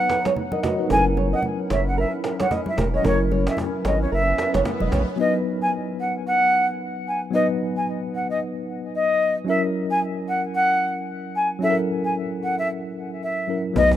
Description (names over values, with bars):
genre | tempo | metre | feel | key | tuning
afrobeats | 112 BPM | 4/4 | swing 58% on 16ths | B major | A4 = 440 Hz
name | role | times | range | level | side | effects
mellow jazz flute | melody | 0.0-13.9 s | C#5 to G#5 | -23 LUFS | left 1 dB | ping-pong delay
mellow tine electric piano | accompaniment | 0.0-14.0 s | F#3 to F#5 | -26 LUFS | left 1 dB | medium stereo tremolo
granular cloud pad | sustained chords | 0.0-5.1 s | F#3 to A#4 | -34 LUFS | equal | built-in reverb
flamenco guitar | riff | 0.1-5.0, 13.8 s | A#4 to D#5 | -27 LUFS | right 6 dB | ping-pong delay
cajon | drums | 0.1-5.1, 13.8-14.0 s | none | -32 LUFS | equal | none
congas | percussion | 0.3-5.1, 13.8-13.9 s | none | -29 LUFS | left 1 dB | none
saturated sub bass | bass | 0.9-5.0, 13.8-14.0 s | E1 to B1 | -24 LUFS | equal | none
swell | sound effects | 3.7-5.2 s | none | -35 LUFS | right 4 dB | none
room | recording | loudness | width
light reverb, small room ambience | rough home demo mix | -20 LUFS | side -11 dB against mid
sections
0.0-5.2 A section; 5.2-14.0 B section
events
swell 3.7-5.2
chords
0.0 B; 0.9 F#7; 5.2 B; 9.5 F#7